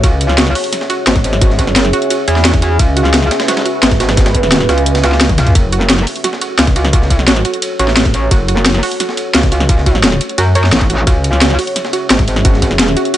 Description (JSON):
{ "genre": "dark technical drum and bass", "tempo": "174 BPM", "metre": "4/4", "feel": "straight", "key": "F# minor", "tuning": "A4 = 439 Hz", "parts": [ { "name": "deep dark ambient pad", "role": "sustained chords", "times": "0.0-13.2 s", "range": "C#4 to E5", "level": "-20 LUFS", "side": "equal", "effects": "chorus, built-in reverb, sidechain pumping" }, { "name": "warbly dusty pluck", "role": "arpeggios", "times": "0.0-13.2 s", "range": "F#4 to C#5", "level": "-21 LUFS", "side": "right 4 dB", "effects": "chorus, sidechain pumping, dub echo" }, { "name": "metallic wobble bass", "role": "bass", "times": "0.0-13.0 s", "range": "F#1 to F#2", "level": "-14 LUFS", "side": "equal", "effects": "chorus, overdrive, sidechain pumping" }, { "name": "breakbeat sampler-style drum kit", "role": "drums", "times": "0.0-13.2 s", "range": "hi-hat, ride cymbal, snare drum", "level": "-22 LUFS", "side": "right 1 dB", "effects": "high-pass filter on cymbals, high-pass filter on snare, high-pass filter on hats" }, { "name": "drum and bass drum kit", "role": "drums", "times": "0.0-13.2 s", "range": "hi-hat, snare drum, toms", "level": "-14 LUFS", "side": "left 1 dB", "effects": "none" }, { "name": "electronic kick drum", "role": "drums", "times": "0.0-12.7 s", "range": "none", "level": "-13 LUFS", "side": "equal", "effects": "none" }, { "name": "metallic wobble bass", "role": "bass", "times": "10.7-11.1 s", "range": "A1", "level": "-14 LUFS", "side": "equal", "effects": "distortion, chorus" } ], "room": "digital ambience", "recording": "nothing above 10.5 kHz", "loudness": "-10 LUFS", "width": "side -12 dB against mid", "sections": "0.0-13.2 A section", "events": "drum fill 5.3", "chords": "0.0 C#m; 5.6 F#m; 11.1 C#m" }